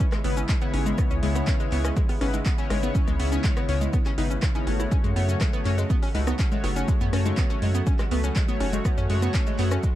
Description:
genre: progressive house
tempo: 122 BPM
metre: 4/4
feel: straight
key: C# minor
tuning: A4 = 440 Hz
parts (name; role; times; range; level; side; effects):
- filtered supersaw swell; sustained chords; 0.0-10.0 s; C#3 to F#4; -34 LUFS; right 2 dB; vintage 12-bit sampler grit, sidechain pumping
- analog pluck; arpeggios; 0.0-9.9 s; C#3 to E4; -31 LUFS; equal; chorus, sidechain pumping, tape echo
- electronic kick drum; drums; 0.0-9.9 s; none; -24 LUFS; equal; overdrive
- pop drum kit; drums; 0.0-9.9 s; handclaps, hi-hat, rim click, shaker; -36 LUFS; equal; overdrive, sidechain pumping on hats, sidechain pumping on cymbals, sidechain pumping on perc
- electronic rim click and congas; percussion; 0.1-9.8 s; none; -37 LUFS; left 3 dB; sidechain pumping on snare, sidechain pumping on perc
- chorused polysynth; stabs; 0.2-9.7 s; C#3 to C#5; -31 LUFS; left 4 dB; vintage 12-bit sampler grit, sidechain pumping, tape echo
- round analog bass; bass; 0.2-9.8 s; F#1 to F#2; -25 LUFS; equal; sidechain pumping
room: little or no reverb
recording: dark, warm production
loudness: -22 LUFS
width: side -13 dB against mid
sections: 0.0-10.0 A section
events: none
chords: 0.0 C#m7; 4.9 F#m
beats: 0.00 0.49 | 0.98 1.47 1.97 2.46 | 2.95 3.44 3.93 4.42 | 4.92 5.41 5.90 6.39 | 6.88 7.38 7.87 8.36 | 8.85 9.34 9.84

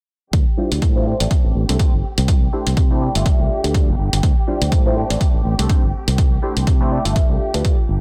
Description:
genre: filtered disco house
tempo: 123 BPM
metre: 4/4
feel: swing 57% on 16ths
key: D minor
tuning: A4 = 438 Hz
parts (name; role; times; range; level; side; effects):
- clear studio string section; sustained chords; 0.3-8.0 s; G4 to G5; -35 LUFS; equal; sidechain pumping, low-pass filter
- modern bright fingered electric bass; bass; 0.3-8.0 s; G1 to C3; -22 LUFS; equal; sidechain pumping, low-pass filter
- electronic hi-hat; drums; 0.3-7.8 s; none; -27 LUFS; equal; sidechain pumping on hats
- electronic kick drum; drums; 0.3-7.8 s; none; -19 LUFS; equal; none
- funky polysynth comp; accompaniment; 0.6-7.8 s; G3 to E5; -26 LUFS; equal; chorus, phaser, cassette tape, sidechain pumping, low-pass filter
room: little or no reverb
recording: dense, heavily limited modern master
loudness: -17 LUFS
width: mono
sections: 0.3-8.0 A section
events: filter sweep 0.3-8.0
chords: 0.3 Dm11; 1.1 Am7; 2.3 C69; 3.3 G7sus2; 4.2 Dm11; 5.0 Am7; 6.2 C69; 7.2 G7sus2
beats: | 0.33 0.82 1.31 1.80 | 2.28 2.77 3.26 3.75 | 4.24 4.72 5.21 5.70 | 6.19 6.67 7.16 7.65

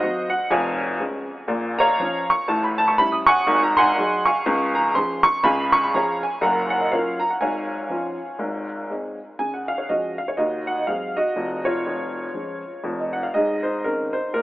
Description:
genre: jazz, stride piano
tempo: 122 BPM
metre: 4/4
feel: swing 60% on 8ths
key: Db major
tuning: A4 = 437 Hz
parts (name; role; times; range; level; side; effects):
- warm upright piano; solo; 0.0-14.4 s; E#1 to Eb6; -19 LUFS; equal; none
room: moderate huge ambient reverb, RT60 4.8 s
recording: telephone sound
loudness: -19 LUFS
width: side -17 dB against mid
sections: 0.0-9.4 A section; 9.4-14.4 B section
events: none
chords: 0.0 Cdim; 0.5 C#/E#; 1.5 Bbm; 2.5 A7; 3.5 Ab7; 4.5 Db; 6.4 Gbmaj7; 7.4 Db/Ab; 8.4 Ab; 9.4 Db; 10.4 Ab7/Eb; 11.4 Db/F; 13.3 Ab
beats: 0.01 0.51 1.00 | 1.49 1.99 2.48 2.98 | 3.47 3.96 4.46 4.95 | 5.44 5.94 6.43 6.92 | 7.42 7.91 8.40 8.90 | 9.39 9.88 10.38 10.87 | 11.37 11.86 12.35 12.85 | 13.34 13.83 14.33

